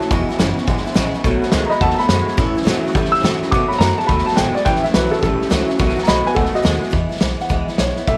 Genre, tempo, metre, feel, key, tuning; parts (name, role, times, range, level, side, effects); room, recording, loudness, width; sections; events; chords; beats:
rockabilly; 211 BPM; 4/4; swing 64% on 8ths; E major; A4 = 440 Hz
dark upright piano; melody; 0.0-8.2 s; F#4 to E6; -22 LUFS; equal
picked steel-string acoustic guitar; accompaniment; 0.0-8.2 s; E2 to F#4; -25 LUFS; equal
electric guitar through a small old amp; riff; 0.0-6.9 s; E2 to A3; -25 LUFS; equal; ensemble chorus
upright bass; bass; 0.0-8.2 s; E1 to C#3; -26 LUFS; equal
vintage drum kit; drums; 0.0-8.2 s; hi-hat, kick drum, snare drum; -22 LUFS; equal
light reverb, small room ambience; -17 LUFS; mono
0.0-6.9 A section; 6.9-8.2 B section
0.1 E; 1.2 B7; 2.4 A; 3.5 B7; 4.7 A; 5.8 B7; 6.9 E
| 0.10 0.39 0.67 0.96 | 1.24 1.53 1.81 2.10 | 2.38 2.67 2.95 3.23 | 3.52 3.80 4.09 4.37 | 4.66 4.94 5.22 5.51 | 5.79 6.08 6.36 6.65 | 6.93 7.22 7.50 7.79 | 8.08